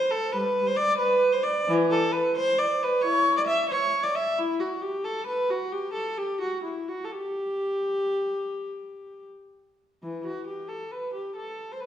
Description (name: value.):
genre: classical, baroque-style suite movement for unaccompanied viola.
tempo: 80-92 BPM (dotted quarters).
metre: 12/8.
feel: rubato.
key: G major.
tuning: A4 = 444 Hz.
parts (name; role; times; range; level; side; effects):
warm viola; solo; 0.0-11.9 s; E3 to E5; -24 LUFS; equal; none.
room: wet recital hall reverb, RT60 1.3 s.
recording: heard from further back in the room.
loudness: -24 LUFS.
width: side -10 dB against mid.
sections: 0.0-10.0 A section; 10.0-11.9 A section.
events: none.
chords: none.